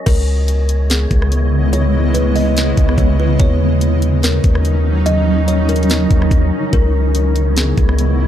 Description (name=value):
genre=hip hop, atmospheric cloud-rap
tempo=144 BPM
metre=4/4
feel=half-time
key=C# dorian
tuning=A4 = 440 Hz
part: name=wind-like tuned noise texture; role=texture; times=0.0-8.3 s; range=B3 to D#5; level=-29 LUFS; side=equal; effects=built-in reverb
part: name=kalimba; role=melody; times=0.1-8.3 s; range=G#4 to D#5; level=-22 LUFS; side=left 2 dB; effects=tape echo
part: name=granular cloud pad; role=sustained chords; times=1.0-8.3 s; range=C#3 to D#5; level=-18 LUFS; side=equal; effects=built-in reverb, sidechain pumping
part: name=long sustained 808-style bass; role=bass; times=0.1-8.3 s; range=C#2 to D#2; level=-15 LUFS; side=equal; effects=none
part: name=trap drum kit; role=drums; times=0.1-8.1 s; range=crash cymbal, hi-hat, kick drum, rim click, snare drum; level=-16 LUFS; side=equal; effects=none
room=digital ambience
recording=dry, gritty hardware recording, transformer saturation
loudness=-12 LUFS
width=side -10 dB against mid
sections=0.1-8.3 A section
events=none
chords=0.1 C#m7; 3.4 D#m7; 6.7 C#m7